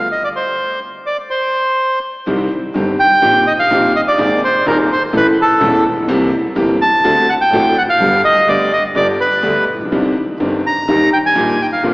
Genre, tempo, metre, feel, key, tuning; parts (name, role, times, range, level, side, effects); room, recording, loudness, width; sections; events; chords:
tango; 126 BPM; 4/4; rubato; C minor; A4 = 440 Hz
bandoneon; melody; 0.0-11.8 s; A4 to Bb5; -13 LUFS; equal
warm grand piano; accompaniment; 0.0-11.9 s; Eb1 to A4; -16 LUFS; equal
clear double bass; bass; 0.0-11.9 s; E1 to Eb2; -26 LUFS; equal
wet church reverb, RT60 3.1 s; recorded in a church or concert hall, AM radio sound; -12 LUFS; side -24 dB against mid
0.0-2.3 A section; 2.3-11.9 B section
0.3 N.C.; 2.3 Cm; 3.2 Eb6/Bb; 4.2 Abadd9; 5.1 A; 6.1 C7; 7.0 D7; 8.0 G; 9.9 Cmadd9; 10.9 Eb